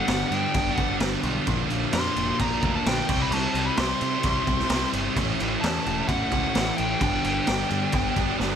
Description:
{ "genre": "quiet-loud alternative rock", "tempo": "130 BPM", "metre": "4/4", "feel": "straight", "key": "unclear", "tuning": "A4 = 440 Hz", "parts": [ { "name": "fuzz lead guitar", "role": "melody", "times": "0.0-8.4 s", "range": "F#5 to C6", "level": "-29 LUFS", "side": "left 2 dB", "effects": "distortion, analog delay" }, { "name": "thick fuzz guitar", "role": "riff", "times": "0.0-8.6 s", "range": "G2 to E4", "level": "-30 LUFS", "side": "left 13 dB", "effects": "distortion" }, { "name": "thick fuzz guitar", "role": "riff", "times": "0.0-8.6 s", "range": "G2 to E4", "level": "-29 LUFS", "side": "right 15 dB", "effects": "distortion" }, { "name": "growling picked electric bass", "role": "bass", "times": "0.1-8.5 s", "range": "E1 to C3", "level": "-31 LUFS", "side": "equal", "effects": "overdrive" }, { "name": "raw garage drum kit", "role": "drums", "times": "0.1-8.5 s", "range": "crash cymbal, kick drum, snare drum", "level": "-27 LUFS", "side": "equal", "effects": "none" } ], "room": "little or no reverb", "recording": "none", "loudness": "-22 LUFS", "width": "side -8 dB against mid", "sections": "0.0-8.6 A section", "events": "drum fill 8.4", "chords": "0.0 G; 1.5 Bbadd9; 3.1 C; 5.2 A; 7.0 G", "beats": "0.08 0.54 1.00 | 1.47 1.93 2.39 2.85 | 3.31 3.78 4.24 4.70 | 5.16 5.62 6.09 6.55 | 7.01 7.47 7.93 8.40" }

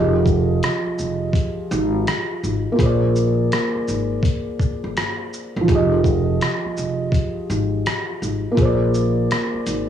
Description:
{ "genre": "lo-fi hip hop", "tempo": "83 BPM", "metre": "4/4", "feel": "swing 65% on 16ths", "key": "F dorian", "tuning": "A4 = 441 Hz", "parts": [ { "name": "felt-muted upright piano", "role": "accompaniment", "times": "0.0-9.9 s", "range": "F3 to Eb5", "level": "-22 LUFS", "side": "equal", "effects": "cassette tape" }, { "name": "upright bass", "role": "bass", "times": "0.0-9.9 s", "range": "F1 to Bb1", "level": "-21 LUFS", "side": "equal", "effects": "none" }, { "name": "lo-fi sampler-style drum kit", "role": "drums", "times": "0.3-9.9 s", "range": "hi-hat, kick drum, rim click, shaker", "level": "-22 LUFS", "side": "equal", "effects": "vintage 12-bit sampler grit" } ], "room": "light reverb", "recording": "home recording on cassette, small room ambience", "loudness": "-18 LUFS", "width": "side -9 dB against mid", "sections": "0.0-9.9 A section", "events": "none", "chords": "0.0 Fm9; 2.8 Bb9; 5.7 Fm9; 8.6 Bb9", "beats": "0.62 1.34 2.07 | 2.79 3.51 4.24 4.96 | 5.68 6.41 7.13 7.85 | 8.57 9.30" }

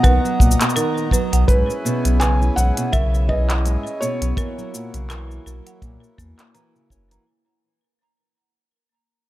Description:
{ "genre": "folktronica", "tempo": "83 BPM", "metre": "4/4", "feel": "swing 56% on 16ths", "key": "unclear", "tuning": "A4 = 440 Hz", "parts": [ { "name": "felt-muted upright piano", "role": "melody", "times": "0.0-6.5 s", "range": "B4 to G#5", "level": "-25 LUFS", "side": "right 1 dB", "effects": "tape echo" }, { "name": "folk marimba with hard mallets", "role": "second line", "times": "0.0-7.3 s", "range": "A#3 to A#5", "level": "-29 LUFS", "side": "right 3 dB", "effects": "tape echo" }, { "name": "hand-pumped harmonium", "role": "sustained chords", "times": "0.0-7.2 s", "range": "A#3 to A#5", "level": "-32 LUFS", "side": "right 1 dB", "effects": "none" }, { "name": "nylon-string guitar", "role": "arpeggios", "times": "0.0-7.3 s", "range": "G#2 to C#4", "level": "-24 LUFS", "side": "right 1 dB", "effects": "tape echo" }, { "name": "warm sub bass", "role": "bass", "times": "0.0-7.2 s", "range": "F#1 to E2", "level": "-18 LUFS", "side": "equal", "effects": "none" }, { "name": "kick drum", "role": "drums", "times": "0.0-7.1 s", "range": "none", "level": "-18 LUFS", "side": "equal", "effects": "none" }, { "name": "organic electronic drum kit", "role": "drums", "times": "0.0-7.2 s", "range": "handclaps, hi-hat, shaker", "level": "-25 LUFS", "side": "left 1 dB", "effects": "overdrive" } ], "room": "small room ambience", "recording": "none", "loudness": "-16 LUFS", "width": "side -15 dB against mid", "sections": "0.0-7.3 A section", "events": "fade-out 0.0-7.3", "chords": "0.0 Bmaj7; 1.5 E6/B; 4.4 F#7/B", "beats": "0.04 0.76 | 1.49 2.21 2.93 3.66 | 4.38 5.10 5.82 6.55" }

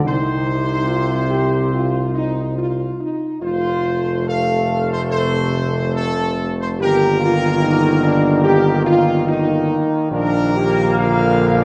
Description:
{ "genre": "classical", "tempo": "71 BPM", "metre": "4/4", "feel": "straight", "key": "unclear", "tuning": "A4 = 440 Hz", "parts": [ { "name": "mellow French horn section", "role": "sustained chords", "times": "0.0-11.6 s", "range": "D4 to A4", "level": "-22 LUFS", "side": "equal", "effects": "none" }, { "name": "mellow trombone section", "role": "sustained chords", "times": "0.0-11.6 s", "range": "C3 to Bb3", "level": "-24 LUFS", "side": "equal", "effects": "none" }, { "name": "warm tuba", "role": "bass", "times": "0.0-11.6 s", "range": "F1 to C2", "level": "-22 LUFS", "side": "equal", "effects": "none" }, { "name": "mellow trumpet section", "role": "melody", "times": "0.1-11.6 s", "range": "A4 to F5", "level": "-26 LUFS", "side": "equal", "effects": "none" } ], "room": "wet scoring stage reverb, RT60 1.7 s", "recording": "dark, warm production", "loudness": "-18 LUFS", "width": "mono", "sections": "0.0-11.6 A section", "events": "none", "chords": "0.1 Cmadd11; 3.4 F; 6.8 Eb/G; 10.1 Bb", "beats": "| 0.06 0.89 1.73 2.58 | 3.42 4.28 5.12 5.96 | 6.80 7.63 8.46 9.29 | 10.11 10.97" }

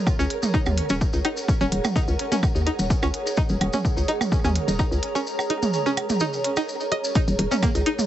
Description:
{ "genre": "minimal techno", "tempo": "127 BPM", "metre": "4/4", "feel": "straight", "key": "Eb minor", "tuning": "A4 = 440 Hz", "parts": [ { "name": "flickering grainy texture", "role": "texture", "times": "0.0-8.1 s", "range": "Bb4", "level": "-37 LUFS", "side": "right 3 dB", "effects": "built-in reverb, sidechain pumping" }, { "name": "granular cloud pad", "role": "texture", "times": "0.0-8.1 s", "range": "Ab4 to Bb5", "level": "-29 LUFS", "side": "right 1 dB", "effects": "built-in reverb, sidechain pumping" }, { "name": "electronic kick drum", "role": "drums", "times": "0.1-7.7 s", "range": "none", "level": "-23 LUFS", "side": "equal", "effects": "none" }, { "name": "electronic percussion blips and toms", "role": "percussion", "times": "0.1-8.1 s", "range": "none", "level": "-27 LUFS", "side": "right 3 dB", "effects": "dub echo" }, { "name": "maracas", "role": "percussion", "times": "0.1-8.1 s", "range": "none", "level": "-34 LUFS", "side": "left 1 dB", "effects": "none" }, { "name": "string-like resonator pluck", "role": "riff", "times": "0.2-7.9 s", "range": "Bb3 to Eb5", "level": "-28 LUFS", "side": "equal", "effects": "chorus, phaser, sidechain pumping, tape echo" }, { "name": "hollow knocking FM bass", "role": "bass", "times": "0.2-7.8 s", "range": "Eb1 to Eb2", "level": "-24 LUFS", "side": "equal", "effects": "sidechain pumping" }, { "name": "electronic hi-hat", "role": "drums", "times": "0.3-8.0 s", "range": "none", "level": "-32 LUFS", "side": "right 1 dB", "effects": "none" } ], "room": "light reverb", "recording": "heavily compressed radio sound, nothing above 8.0 kHz", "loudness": "-20 LUFS", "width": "side -12 dB against mid", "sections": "0.0-8.1 A section", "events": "kick drops out 5.3-7.2", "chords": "0.0 Ebm", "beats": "0.07 0.54 1.01 | 1.48 1.96 2.43 2.90 | 3.37 3.85 4.32 4.79 | 5.26 5.74 6.21 6.68 | 7.15 7.63" }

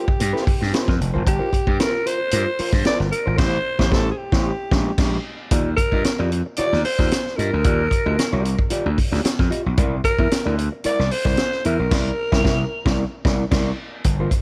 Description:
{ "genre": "funk", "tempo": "113 BPM", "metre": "4/4", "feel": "straight", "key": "unclear", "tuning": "A4 = 440 Hz", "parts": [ { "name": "growling alto saxophone", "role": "melody", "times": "0.0-13.2 s", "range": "G4 to D5", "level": "-26 LUFS", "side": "equal", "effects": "none" }, { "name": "hollow-body jazz guitar", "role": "accompaniment", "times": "0.0-14.4 s", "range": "Ab3 to E5", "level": "-30 LUFS", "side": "equal", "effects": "none" }, { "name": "vintage drum kit", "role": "drums", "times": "0.1-14.4 s", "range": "crash cymbal, hi-hat, kick drum, snare drum", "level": "-24 LUFS", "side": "equal", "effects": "none" }, { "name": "gritty slap bass", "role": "bass", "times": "0.2-14.3 s", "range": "F1 to G2", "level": "-24 LUFS", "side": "equal", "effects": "overdrive" } ], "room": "small room reverb", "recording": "none", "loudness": "-20 LUFS", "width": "mono", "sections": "0.0-5.5 A section; 5.5-14.1 B section", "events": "band accent 3.4-5.5, 11.9-14.1", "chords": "0.0 Gm7; 3.4 Am7; 4.5 Bb6; 5.5 Ebmaj9; 9.8 C9", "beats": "0.20 0.73 | 1.26 1.79 2.33 2.86 | 3.39 3.92 4.45 4.98 | 5.52 6.05 6.58 7.12 | 7.65 8.18 8.71 9.25 | 9.78 10.31 10.85 11.38 | 11.92 12.45 12.98 13.52 | 14.05" }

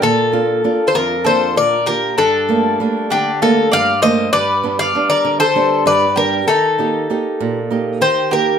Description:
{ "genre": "greek folk, Greek bouzouki band", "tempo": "196 BPM (eighths)", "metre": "7/8", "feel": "straight", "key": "unclear", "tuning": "A4 = 440 Hz", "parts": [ { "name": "Greek bouzouki", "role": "melody", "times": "0.0-8.6 s", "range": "G4 to F5", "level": "-16 LUFS", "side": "left 4 dB", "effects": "none" }, { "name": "mandolin", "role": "second line", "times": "0.0-8.6 s", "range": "D4 to D5", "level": "-20 LUFS", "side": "equal", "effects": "none" }, { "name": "flamenco guitar", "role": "accompaniment", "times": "0.0-8.6 s", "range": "F2 to G4", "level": "-19 LUFS", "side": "right 6 dB", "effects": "none" } ], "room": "wet studio reverb, RT60 0.6 s", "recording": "none", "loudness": "-13 LUFS", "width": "side -7 dB against mid", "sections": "0.0-8.6 A section", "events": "none", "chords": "0.0 Bb; 2.2 Gmadd9; 4.3 G; 6.5 Eb", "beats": "| 0.03 0.34 0.64 0.95 1.26 1.57 1.87 | 2.18 2.49 2.79 3.10 3.41 3.72 4.02 | 4.33 4.64 4.94 5.25 5.56 5.86 6.17 | 6.48 6.78 7.09 7.39 7.70 8.01 8.31" }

